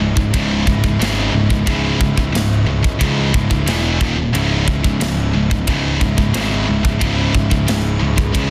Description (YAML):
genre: heavy metal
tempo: 90 BPM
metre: 4/4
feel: straight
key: C# minor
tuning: A4 = 439 Hz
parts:
  - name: high-gain distorted guitar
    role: riff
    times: 0.0-8.5 s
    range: C#2 to E3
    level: -23 LUFS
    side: equal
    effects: distortion
  - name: high-gain distorted guitar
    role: riff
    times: 0.0-8.5 s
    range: C#2 to E3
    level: -24 LUFS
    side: equal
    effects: distortion
  - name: overdriven electric guitar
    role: riff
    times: 0.0-8.5 s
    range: C#2 to E4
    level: -26 LUFS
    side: equal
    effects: none
  - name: overdriven picked electric bass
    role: bass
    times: 0.0-8.5 s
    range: C#1 to C#2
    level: -22 LUFS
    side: equal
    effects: none
  - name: tight metal drum kit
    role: drums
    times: 0.2-8.5 s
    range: kick drum, ride cymbal, snare drum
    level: -22 LUFS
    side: equal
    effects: none
room: light reverb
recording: dense, heavily limited modern master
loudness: -17 LUFS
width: mono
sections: 0.0-8.5 A section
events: none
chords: 0.0 C#m; 3.7 E5; 4.0 D#5; 4.3 C#m